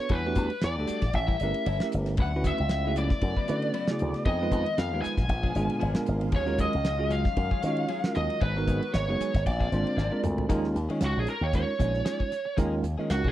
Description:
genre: electric jazz fusion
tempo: 115 BPM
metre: 4/4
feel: swing 55% on 16ths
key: unclear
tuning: A4 = 440 Hz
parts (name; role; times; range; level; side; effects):
- lead guitar through a small cranked amp; melody; 0.0-13.3 s; Gb4 to Ab5; -31 LUFS; equal; overdrive
- bell-like tine electric piano; accompaniment; 0.0-13.3 s; C#3 to G#5; -32 LUFS; right 3 dB; medium stereo tremolo
- clean electric guitar; stabs; 0.1-13.3 s; E#3 to B4; -38 LUFS; left 7 dB; wide subtle chorus
- slap bass with an envelope filter; bass; 0.1-13.3 s; F#1 to D#3; -29 LUFS; equal; none
- damped 70s drum kit; drums; 0.1-13.3 s; hi-hat, kick drum, ride cymbal, snare drum, toms; -29 LUFS; equal; none
- warm analog pad; sustained chords; 2.2-10.5 s; A#2 to F5; -38 LUFS; left 1 dB; chorus
room: studio reverb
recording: dry, close 1970s-style studio recording, tape saturation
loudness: -25 LUFS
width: side -13 dB against mid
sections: 0.0-10.5 A section; 10.5-13.3 B section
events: tine electric piano fill 5.6-6.3; drum fill 10.0-10.5; lead electric guitar solo 10.5-13.3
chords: 0.1 Em11; 1.1 A7b9; 2.2 Dmaj13; 4.3 Fm7b5; 5.3 A#7b9; 6.3 D#m11; 8.4 G#m7; 9.5 A#9; 10.5 Eb9sus4

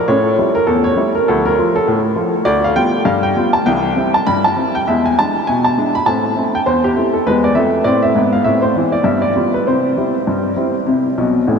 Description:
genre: ragtime piano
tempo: 100 BPM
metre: 2/4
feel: swing 59% on 16ths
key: C major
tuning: A4 = 438 Hz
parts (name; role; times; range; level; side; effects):
- clear upright piano; solo; 0.0-11.6 s; A1 to B5; -13 LUFS; equal; analog delay
room: wet huge ambient reverb, RT60 8.0 s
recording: dreamy mix soaked in reverb, cassette tape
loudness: -13 LUFS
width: side -6 dB against mid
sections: 0.0-11.6 A section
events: upright piano fill 11.2-11.6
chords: 0.1 A7; 1.3 Dm; 2.5 G7/D; 3.7 C; 4.9 E7; 6.1 Am; 7.3 E; 8.5 Am; 9.1 G7; 9.7 C

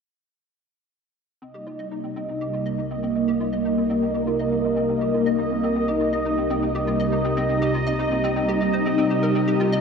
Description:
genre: ambient, sequencer-driven space music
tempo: 121 BPM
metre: 4/4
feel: straight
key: C minor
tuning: A4 = 438 Hz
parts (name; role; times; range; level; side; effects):
- phased string machine; sustained chords; 1.9-9.8 s; C3 to Eb5; -22 LUFS; equal; ensemble chorus, phaser
- hollow square pluck; riff; 1.4-9.8 s; C4 to Eb5; -33 LUFS; left 1 dB; ensemble chorus, ping-pong delay
- fat analog bass; bass; 1.4-9.8 s; C2; -38 LUFS; left 1 dB; tube saturation
- bubbling stepped-filter texture; texture; 1.4-9.8 s; Eb4 to G5; -27 LUFS; equal; chorus, built-in reverb
room: wet cathedral reverb, RT60 5.3 s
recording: in a vast, echoing space, cassette tape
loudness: -20 LUFS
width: side -6 dB against mid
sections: 1.4-9.8 A section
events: fade-in on synth arpeggio sound 1.4-9.8; fade-in on analog synth bass 1.4-9.8; filter sweep on string machine 1.4-9.8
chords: 1.4 Cm7

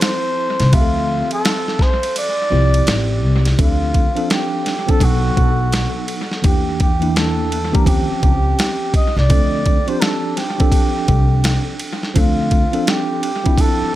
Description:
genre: hip hop, jazz-hop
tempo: 84 BPM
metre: 4/4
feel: swing 63% on 16ths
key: D minor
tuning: A4 = 438 Hz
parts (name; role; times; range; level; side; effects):
- trumpet with cup mute; melody; 0.0-14.0 s; F4 to Eb5; -22 LUFS; right 1 dB; analog delay
- tine electric piano; accompaniment; 0.0-14.0 s; E3 to E5; -22 LUFS; equal; fast stereo tremolo, analog delay
- boom bap sampler-style drum kit; drums; 0.0-13.8 s; hi-hat, kick drum, ride cymbal, snare drum; -18 LUFS; equal; analog delay
- upright bass; bass; 0.6-13.8 s; A1 to E2; -17 LUFS; equal; none
room: digital ambience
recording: echo-heavy mix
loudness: -14 LUFS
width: side -14 dB against mid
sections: 0.0-3.6 A section; 3.6-14.0 B section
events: kick muted 2.2-3.6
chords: 0.0 Dm11; 3.6 Dm7; 5.0 B7; 6.4 Em7b5; 7.9 Eb13; 9.3 Dm7

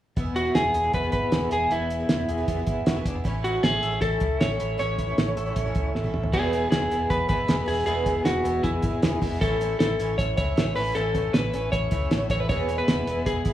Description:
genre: jangly indie pop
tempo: 156 BPM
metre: 4/4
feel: straight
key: E major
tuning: A4 = 440 Hz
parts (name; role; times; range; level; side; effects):
- picked twelve-string acoustic guitar; accompaniment; 0.2-13.5 s; E2 to E4; -32 LUFS; right 8 dB; none
- electric guitar through a small old amp; arpeggios; 0.2-13.5 s; B3 to A4; -32 LUFS; left 4 dB; tremolo, slapback echo
- vintage muted fingered electric bass; bass; 0.2-13.5 s; E1 to C#2; -30 LUFS; equal; none
- cloth-damped thuddy drum kit; drums; 0.2-13.5 s; crash cymbal, hi-hat, kick drum, snare drum, toms; -25 LUFS; right 1 dB; none
- lightly driven lead guitar; melody; 0.4-13.5 s; E4 to C#5; -26 LUFS; left 1 dB; slapback echo
room: small room ambience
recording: rough home demo mix, studio reverb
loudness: -22 LUFS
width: side -12 dB against mid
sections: 0.2-6.3 A section; 6.3-13.5 B section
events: drum fill 6.0-6.3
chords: 0.2 E; 3.3 A; 6.3 E; 9.4 A; 12.5 E

